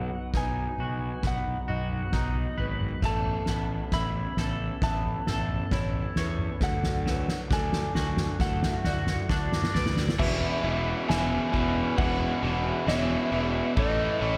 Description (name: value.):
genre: post-rock.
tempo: 67 BPM.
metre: 4/4.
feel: straight.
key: E major.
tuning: A4 = 440 Hz.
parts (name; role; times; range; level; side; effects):
electric slide guitar; melody; 0.0-14.4 s; D#5 to B5; -36 LUFS; equal; slapback echo.
pipe organ, flutes; sustained chords; 0.0-14.4 s; E3 to A4; -40 LUFS; equal; none.
felt-muted upright piano; arpeggios; 0.0-14.4 s; A4 to E5; -43 LUFS; equal; slapback echo.
twangy electric guitar; arpeggios; 0.0-10.2 s; B2 to D5; -39 LUFS; equal; lush chorus, slapback echo.
fuzz fingered electric bass; bass; 0.0-14.4 s; E1 to E2; -34 LUFS; equal; overdrive.
soft-mallet drum kit; drums; 0.3-14.4 s; crash cymbal, kick drum, snare drum, toms; -32 LUFS; equal; none.
overdriven electric guitar; riff; 10.2-14.4 s; E2 to A3; -31 LUFS; equal; spring reverb.
room: light reverb.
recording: none.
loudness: -28 LUFS.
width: mono.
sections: 0.0-10.2 A section; 10.2-14.4 B section.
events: build-up 0.0-10.2; drum fill 0.0-10.2.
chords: 0.0 B; 3.0 Aadd9; 6.6 D; 10.2 E6; 13.8 A.